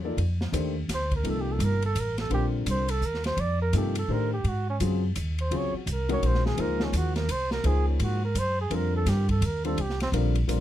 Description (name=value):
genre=modal jazz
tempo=169 BPM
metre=3/4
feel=swing 63% on 8ths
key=F mixolydian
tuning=A4 = 440 Hz
part: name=trumpet with bucket mute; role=melody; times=0.0-10.1 s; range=C4 to D5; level=-31 LUFS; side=right 3 dB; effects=none
part: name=warm upright piano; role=accompaniment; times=0.0-10.6 s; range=C3 to D5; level=-31 LUFS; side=left 4 dB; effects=none
part: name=upright bass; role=bass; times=0.0-10.6 s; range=G1 to A2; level=-26 LUFS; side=equal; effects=none
part: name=open jazz drum kit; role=drums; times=0.2-10.6 s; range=hi-hat, kick drum, ride cymbal, snare drum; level=-36 LUFS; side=equal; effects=none
room=little or no reverb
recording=close, detailed microphones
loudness=-24 LUFS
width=side -12 dB against mid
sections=0.2-10.6 A section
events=muted trumpet solo 0.2-10.6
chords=0.2 F9sus4; 4.5 Ab9sus4; 8.7 F9sus4